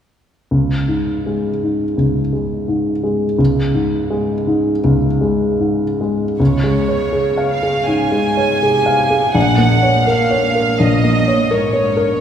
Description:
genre	classical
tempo	81 BPM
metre	4/4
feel	uneven beats, rubato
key	Db major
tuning	A4 = 439 Hz
part	warm baby grand piano	melody	0.5-12.2 s	Bb1 to F5	-14 LUFS	equal	none
part	warm symphonic violin section	melody	6.4-12.2 s	Db5 to Ab5	-18 LUFS	right 2 dB	none
part	warm symphonic cello section	bass	6.4-12.2 s	Ab2 to Db3	-24 LUFS	right 1 dB	none
room	wet church reverb, RT60 2.7 s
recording	heard from further back in the room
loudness	-14 LUFS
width	side -8 dB against mid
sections	0.5-6.4 A section; 6.4-12.2 B section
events	none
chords	0.5 Db5; 6.4 Db; 9.3 Gb/Bb

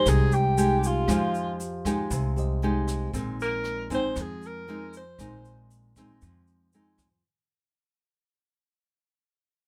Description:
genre	bossa nova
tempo	117 BPM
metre	4/4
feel	straight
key	unclear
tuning	A4 = 440 Hz
part	warm alto saxophone	melody	0.0-5.7 s	F4 to C5	-30 LUFS	equal	none
part	bright tine electric piano	accompaniment	0.0-3.2 s	G4 to F5	-38 LUFS	equal	none
part	nylon-string guitar	accompaniment	0.0-7.2 s	Bb2 to G4	-32 LUFS	equal	none
part	upright bass	bass	0.1-7.2 s	Bb1 to F2	-30 LUFS	equal	none
part	jazz brush drum kit	drums	0.1-7.1 s	hi-hat, kick drum, rim click	-39 LUFS	equal	none
part	tube shaker	percussion	0.1-7.2 s	none	-43 LUFS	equal	none
room	light reverb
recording	none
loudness	-26 LUFS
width	mono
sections	0.0-7.2 A section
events	fade-out 0.0-7.2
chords	0.0 Fm9; 3.1 Bb9sus4

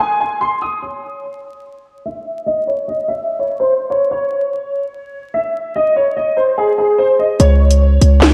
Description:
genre	hip hop, drill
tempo	146 BPM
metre	4/4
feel	half-time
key	unclear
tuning	A4 = 441 Hz
part	dark concert grand piano	melody	0.0-8.3 s	G#4 to D#6	-18 LUFS	equal	ensemble chorus, low-pass filter, analog delay
part	hard-hitting 808-style bass	bass	7.4-8.3 s	C#2	-11 LUFS	equal	none
part	drill drum kit	drums	7.4-8.3 s	handclaps, hi-hat, snare drum	-16 LUFS	equal	none
room	wet plate reverb, RT60 2.2 s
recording	dreamy mix soaked in reverb, vinyl crackle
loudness	-16 LUFS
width	mono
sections	0.8-7.4 A section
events	break 0.0-0.8; filter sweep on grand piano 0.8-7.4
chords	0.0 G#; 0.8 N.C.

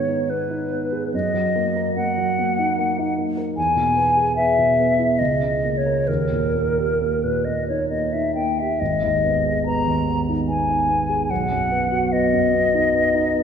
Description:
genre	classical, romantic duo for flute and grand piano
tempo	65-76 BPM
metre	3/4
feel	rubato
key	G# minor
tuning	A4 = 440 Hz
part	hollow concert flute	melody	0.0-13.4 s	A#4 to A#5	-20 LUFS	left 1 dB	none
part	warm concert grand piano	accompaniment	0.0-13.4 s	G#1 to A#4	-22 LUFS	right 2 dB	none
room	wet concert hall reverb, RT60 1.9 s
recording	recorded in a church or concert hall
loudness	-18 LUFS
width	side -7 dB against mid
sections	0.0-13.4 A section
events	none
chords	0.0 G#m; 1.1 D#m/F#; 3.6 E; 5.2 A#madd11/C#; 6.1 D#; 8.8 G#m; 11.3 B

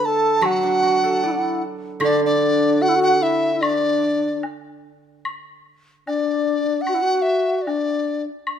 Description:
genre	chinese traditional, Chinese chamber ensemble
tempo	75 BPM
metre	2/4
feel	rubato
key	D gong mode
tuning	A4 = 440 Hz
part	reedy large dizi	melody	0.0-8.2 s	D5 to A5	-20 LUFS	right 2 dB	none
part	reedy low xiao	second line	0.0-8.3 s	D4 to A4	-22 LUFS	left 4 dB	none
part	steel-string zither	accompaniment	0.0-4.4 s	D3 to D5	-24 LUFS	right 4 dB	none
part	woodblock	percussion	0.4-8.6 s	none	-28 LUFS	left 2 dB	none
room	light reverb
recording	minimal, uncompressed stereo recording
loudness	-17 LUFS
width	side -8 dB against mid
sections	0.0-5.2 A section; 5.2-8.6 B section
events	none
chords	none

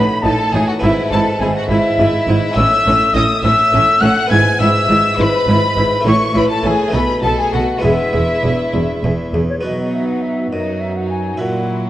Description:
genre	classical, baroque-style concerto movement with solo episodes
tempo	68 BPM (dotted quarters)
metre	6/8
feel	straight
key	E major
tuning	A4 = 441 Hz
part	rich chamber violin section	melody	0.0-11.9 s	F#4 to G#6	-24 LUFS	left 3 dB	none
part	silver concert flute	melody	0.0-11.9 s	C#5 to G#6	-18 LUFS	left 1 dB	none
part	clear symphonic violin section	second line	0.0-11.9 s	D#4 to G#5	-22 LUFS	left 2 dB	none
part	harpsichord	accompaniment	0.0-11.9 s	E2 to F#4	-22 LUFS	equal	none
part	rich chamber viola section	accompaniment	0.0-11.9 s	F#3 to A4	-22 LUFS	right 1 dB	none
part	rich chamber double bass section	bass	0.0-9.4 s	E1 to B1	-20 LUFS	right 1 dB	none
part	warm chamber cello section	bass	0.2-11.9 s	E2 to B2	-20 LUFS	right 2 dB	none
room	wet recital hall reverb, RT60 1.8 s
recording	worn, warbling old tape, cassette tape, warbly pitch drift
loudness	-12 LUFS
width	side -14 dB against mid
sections	0.0-9.6 A section; 9.6-11.9 B section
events	none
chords	0.0 B7/A; 0.8 E/G#; 2.6 A; 4.3 E/G#; 6.1 A5; 6.9 B7; 7.8 E; 9.6 B

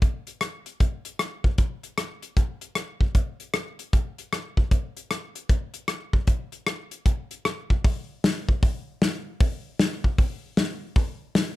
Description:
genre	country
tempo	154 BPM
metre	4/4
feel	swing 64% on 8ths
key	none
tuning	none
part	natural country drum kit	drums	0.0-11.5 s	hi-hat, kick drum, rim click, snare drum	-22 LUFS	equal	none
room	little or no reverb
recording	dark, warm production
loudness	-24 LUFS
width	side -17 dB against mid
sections	0.0-7.8 A section; 7.8-11.6 B section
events	none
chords	none

